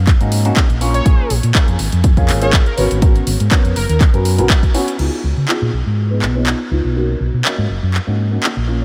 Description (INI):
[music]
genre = filtered disco house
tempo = 122 BPM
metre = 4/4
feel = swing 54% on 16ths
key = Db mixolydian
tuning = A4 = 441 Hz
[part]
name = fingered electric bass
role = bass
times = 0.0-8.8 s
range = Gb1 to Db3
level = -19 LUFS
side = equal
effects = sidechain pumping, low-pass filter
[part]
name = electronic kick drum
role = drums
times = 0.1-4.7 s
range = none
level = -14 LUFS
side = equal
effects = overdrive
[part]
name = house drum kit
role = drums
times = 0.1-8.5 s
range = crash cymbal, handclaps, hi-hat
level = -24 LUFS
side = equal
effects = overdrive, sidechain pumping on hats, sidechain pumping on cymbals
[part]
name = warm baby grand piano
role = accompaniment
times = 0.2-8.8 s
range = Bb3 to Db5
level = -24 LUFS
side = equal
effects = phaser, vintage 12-bit sampler grit, sidechain pumping, low-pass filter
[part]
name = analog synth brass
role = melody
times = 0.9-8.8 s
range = Bb4 to F5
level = -30 LUFS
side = equal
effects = chorus, sidechain pumping, low-pass filter, diffuse ambient delay
[sound]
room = light reverb, digital ambience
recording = none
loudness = -15 LUFS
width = mono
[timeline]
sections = 0.0-5.0 A section; 5.0-8.8 B section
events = filter sweep 5.0-8.8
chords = 0.0 Cbmaj9 (rootless); 0.8 Bbm7; 2.8 Abm11; 5.0 Db9; 7.0 Cbmaj9